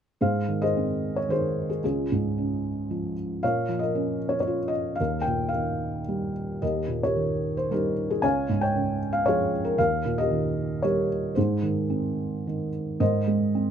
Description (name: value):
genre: classical, lyrical solo piano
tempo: 113 BPM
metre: 3/4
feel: rubato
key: Ab major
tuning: A4 = 440 Hz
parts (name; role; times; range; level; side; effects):
- felt-muted upright piano; solo; 0.2-13.7 s; Db2 to Ab5; -24 LUFS; equal; none
room: light reverb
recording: close, detailed microphones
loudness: -24 LUFS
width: side -8 dB against mid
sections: 0.2-13.0 A section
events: none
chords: 0.2 Ab; 1.8 Db; 3.4 Bbm; 5.0 Eb; 8.2 Db; 9.8 Eb; 11.4 Ab; 13.0 Abadd9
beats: | 0.21 0.76 1.30 | 1.83 2.36 2.90 | 3.42 3.94 4.46 | 4.99 5.52 6.07 | 6.62 7.17 7.70 | 8.23 8.75 9.27 | 9.79 10.31 10.83 | 11.36 11.90 12.45 | 13.01 13.55